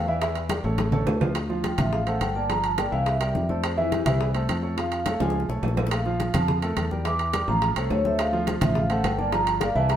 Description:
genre	Afro-Cuban jazz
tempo	211 BPM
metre	4/4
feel	straight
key	unclear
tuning	A4 = 440 Hz
part	vibraphone with medium mallets	melody	0.0-10.0 s	E4 to D6	-27 LUFS	equal	none
part	warm concert grand piano	accompaniment	0.0-10.0 s	E3 to E#5	-29 LUFS	right 2 dB	none
part	fingered electric bass	bass	0.0-10.0 s	G1 to F2	-27 LUFS	left 1 dB	none
part	bongos	percussion	0.2-10.0 s	none	-35 LUFS	left 4 dB	none
part	congas	percussion	0.2-10.0 s	none	-30 LUFS	left 1 dB	none
part	timbales	percussion	0.2-10.0 s	none	-32 LUFS	right 4 dB	none
room	moderate stone room reverb, RT60 1.0 s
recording	band playing live in one room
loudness	-22 LUFS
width	side -10 dB against mid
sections	0.0-1.4 A section; 1.4-10.0 A section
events	vibraphone solo 0.0-10.0; drum fill 0.8-1.4, 5.2-5.9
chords	0.2 Edim; 0.8 Aaug; 1.4 Dm7; 2.5 Gm7; 3.1 C7; 3.6 Fmaj7; 4.8 Faug; 5.9 Bb5; 7.1 Em7b5; 7.6 Aaug; 8.2 Dm7; 9.3 Gm7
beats	| 0.22 0.50 0.79 1.07 | 1.36 1.64 1.93 2.21 | 2.50 2.78 3.07 3.35 | 3.64 3.92 4.21 4.49 | 4.78 5.06 5.34 5.63 | 5.92 6.20 6.48 6.77 | 7.05 7.34 7.62 7.91 | 8.19 8.48 8.76 9.04 | 9.33 9.61 9.90

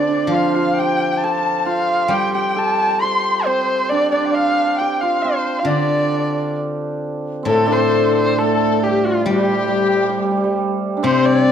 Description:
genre	chinese traditional, Chinese chamber ensemble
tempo	67 BPM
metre	2/4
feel	straight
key	D yu mode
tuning	A4 = 441 Hz
part	dark erhu	melody	0.0-11.5 s	F4 to C6	-20 LUFS	equal	none
part	bright reedy large dizi	second line	0.0-11.5 s	F4 to C6	-22 LUFS	left 7 dB	none
part	hammered dulcimer	second line	0.0-11.5 s	G3 to C5	-20 LUFS	right 5 dB	none
part	steel-string zither	accompaniment	0.0-11.5 s	A2 to G3	-23 LUFS	left 4 dB	none
room	moderate recital hall reverb, RT60 1.4 s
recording	dark, warm production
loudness	-15 LUFS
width	side -8 dB against mid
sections	0.0-7.5 A section; 7.5-11.5 B section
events	none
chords	none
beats	| 0.30 1.21 | 2.11 3.01 | 3.90 4.78 | 5.67 6.57 | 7.48 8.38 | 9.27 10.16 | 11.05

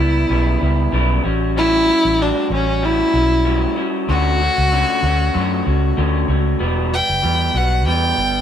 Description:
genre	indie pop, bedroom pop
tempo	95 BPM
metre	4/4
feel	swing 55% on 16ths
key	E dorian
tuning	A4 = 440 Hz
part	rich violin	melody	0.0-8.4 s	C#4 to G5	-18 LUFS	equal	none
part	electric guitar through a small old amp	accompaniment	0.0-8.4 s	A2 to F#4	-21 LUFS	left 1 dB	vibrato effect
part	vintage muted fingered electric bass	bass	0.0-8.4 s	E1 to F#2	-19 LUFS	equal	none
room	light reverb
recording	band playing live in one room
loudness	-15 LUFS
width	side -9 dB against mid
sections	0.0-6.6 A section; 6.6-8.4 B section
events	none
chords	0.0 C#m7b5; 1.2 A13; 4.1 Dmaj7; 6.6 Emadd9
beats	0.29 0.92 | 1.55 2.19 2.82 3.45 | 4.08 4.71 5.34 5.97 | 6.60 7.23 7.87

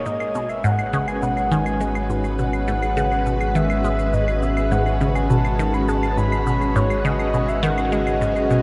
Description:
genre	ambient, sequencer-driven space music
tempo	103 BPM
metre	4/4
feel	straight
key	G# minor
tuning	A4 = 440 Hz
part	breathy flute-like synth lead	melody	0.0-8.6 s	C#5 to B5	-27 LUFS	equal	chorus, tape echo
part	string machine, full ensemble	sustained chords	0.0-8.6 s	G#3 to Ab5	-27 LUFS	equal	ensemble chorus
part	warm sub bass	bass	0.0-8.6 s	G#1	-28 LUFS	equal	none
part	resonant blip pluck	riff	0.1-8.6 s	G#2 to G#3	-26 LUFS	equal	phaser, tape echo
part	cabasa and claves	percussion	0.1-8.6 s	none	-38 LUFS	equal	tape echo
room	wet huge ambient reverb, RT60 8.7 s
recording	in a vast, echoing space, cassette tape, nothing above 10.9 kHz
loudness	-21 LUFS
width	mono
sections	0.1-8.6 A section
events	none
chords	0.1 G#m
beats	| 0.06 0.64 1.22 1.80 | 2.39 2.97 3.55 4.13 | 4.72 5.30 5.88 6.47 | 7.05 7.63 8.21

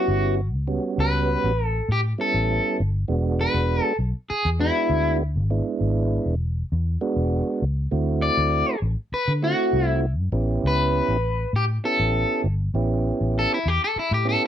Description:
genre	straight-eighth soul blues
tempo	100 BPM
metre	4/4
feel	straight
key	A mixolydian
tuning	A4 = 441 Hz
part	electric guitar at the edge of break-up	melody	0.0-14.4 s	E4 to D5	-23 LUFS	left 2 dB	harmonic tremolo, slapback echo
part	tonewheel organ	accompaniment	0.0-14.5 s	G3 to G4	-25 LUFS	right 4 dB	slow rotary speaker, overdrive
part	vintage muted fingered electric bass	bass	0.1-14.4 s	E1 to D3	-23 LUFS	equal	none
room	little or no reverb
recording	dry, close 1970s-style studio recording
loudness	-20 LUFS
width	side -10 dB against mid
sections	0.0-12.7 A section; 12.7-14.5 B section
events	clean electric guitar solo 12.7-14.5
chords	0.0 A9; 3.1 E9; 7.9 D9; 10.3 A9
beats	0.08 | 0.68 1.28 1.89 2.49 | 3.09 3.70 4.30 4.90 | 5.51 6.11 6.71 7.32 | 7.92 8.52 9.12 9.73 | 10.33 10.93 11.54 12.14 | 12.74 13.35 13.95

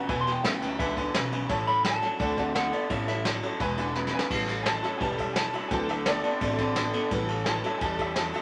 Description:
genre	rockabilly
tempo	171 BPM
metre	4/4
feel	straight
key	A mixolydian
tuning	A4 = 439 Hz
part	honky-tonk upright piano	accompaniment	0.0-8.4 s	C#3 to B5	-34 LUFS	equal	none
part	picked steel-string acoustic guitar	accompaniment	0.0-8.4 s	A2 to B4	-39 LUFS	equal	none
part	electric guitar through a small old amp	riff	0.0-8.4 s	E2 to C4	-34 LUFS	equal	none
part	upright bass	bass	0.1-8.3 s	E1 to E2	-38 LUFS	equal	none
part	vintage brush drum kit	drums	0.1-8.4 s	crash cymbal, kick drum, ride cymbal, snare drum	-34 LUFS	equal	none
part	electric guitar through a small old amp	melody	0.2-3.2 s	D5 to C6	-32 LUFS	equal	spring reverb
room	wet club reverb, RT60 0.8 s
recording	none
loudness	-28 LUFS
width	mono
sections	0.0-4.3 A section; 4.3-8.4 B section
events	drum fill 4.0-4.3; honky-tonk piano solo 4.3-8.4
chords	0.0 E7; 1.5 A7; 2.2 D7; 2.9 A7; 3.6 E7; 4.3 A7; 5.7 D7; 7.1 A7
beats	| 0.09 0.44 0.79 1.15 | 1.50 1.85 2.20 2.55 | 2.90 3.25 3.60 3.95 | 4.30 4.66 5.01 5.36 | 5.71 6.06 6.41 6.76 | 7.11 7.46 7.81 8.16

